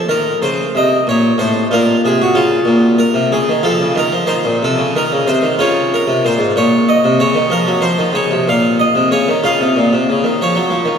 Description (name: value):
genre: classical, baroque-style suite movement for harpsichord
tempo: 62 BPM (dotted quarters)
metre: 12/8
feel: rubato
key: Bb minor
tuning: A4 = 440 Hz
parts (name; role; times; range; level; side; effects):
- harpsichord; solo; 0.0-11.0 s; Ab2 to F5; -12 LUFS; equal; none
room: wet cathedral reverb, RT60 5.0 s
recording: recorded in a church or concert hall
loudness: -12 LUFS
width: side -7 dB against mid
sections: 0.0-11.0 A section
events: none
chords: 0.0 F; 1.7 Bbm; 9.4 Db